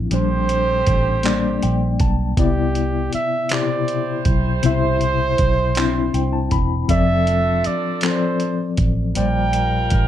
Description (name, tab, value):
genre	slow six-eight R&B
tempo	53 BPM (dotted quarters)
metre	6/8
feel	straight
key	C major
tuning	A4 = 442 Hz
part	reed electric piano	accompaniment	0.0-10.1 s	Bb2 to B5	-22 LUFS	left 6 dB	fast tremolo
part	vintage muted fingered electric bass	bass	0.0-10.1 s	E1 to C2	-21 LUFS	right 1 dB	none
part	warm flugelhorn	melody	0.1-10.1 s	G4 to G5	-22 LUFS	right 4 dB	slapback echo
part	warm horn section	stabs	0.1-10.1 s	D3 to C5	-29 LUFS	right 5 dB	none
part	dusty soul sampler-style drum kit	drums	0.1-10.1 s	handclaps, hi-hat, kick drum	-22 LUFS	right 1 dB	none
room	light reverb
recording	none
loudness	-16 LUFS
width	side -11 dB against mid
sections	0.0-10.1 A section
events	reed electric piano fill 1.2-2.4, 5.8-6.9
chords	0.1 Bb69; 2.4 Cmaj9; 6.9 F6; 9.2 Bb69